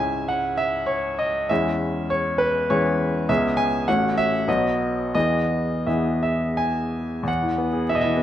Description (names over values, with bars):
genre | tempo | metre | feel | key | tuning
classical, romantic character piece for solo piano | 81-105 BPM | 3/4 | rubato | C# minor, E major from 3.3 s | A4 = 437 Hz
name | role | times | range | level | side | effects
bright grand piano | solo | 0.0-8.2 s | A1 to G#5 | -20 LUFS | equal | none
room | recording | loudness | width
moderate recital hall reverb, RT60 1.3 s | close, detailed microphones | -20 LUFS | side -11 dB against mid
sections
0.0-7.3 A section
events
none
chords
0.0 C#m; 1.5 C#m/E; 3.3 C#m7; 3.9 F#m/A; 4.5 B; 5.1 E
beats
0.30 0.89 | 1.50 2.11 2.70 | 3.29 3.87 4.47 | 5.14 5.88 6.59 | 7.28 7.87